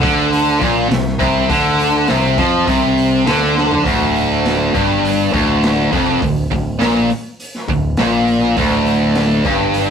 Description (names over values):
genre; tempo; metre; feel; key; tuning
hard rock; 102 BPM; 4/4; straight; D minor; A4 = 440 Hz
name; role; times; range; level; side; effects
distorted electric guitar; riff; 0.0-9.9 s; D2 to F3; -17 LUFS; left 5 dB; overdrive
tight distorted guitar; riff; 0.0-9.9 s; D2 to F3; -16 LUFS; right 4 dB; distortion
growling fingered electric bass; bass; 0.0-9.9 s; D1 to F2; -22 LUFS; equal; overdrive
raw garage drum kit; drums; 0.0-9.9 s; hi-hat, kick drum, snare drum, toms; -23 LUFS; equal; none
room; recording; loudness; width
moderate small room reverb, RT60 0.5 s; rough rehearsal-room recording, warm saturation; -13 LUFS; side -7 dB against mid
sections
0.0-3.9 A section; 3.9-9.9 B section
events
drum fill 3.6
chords
0.0 Bbadd9; 3.9 Dm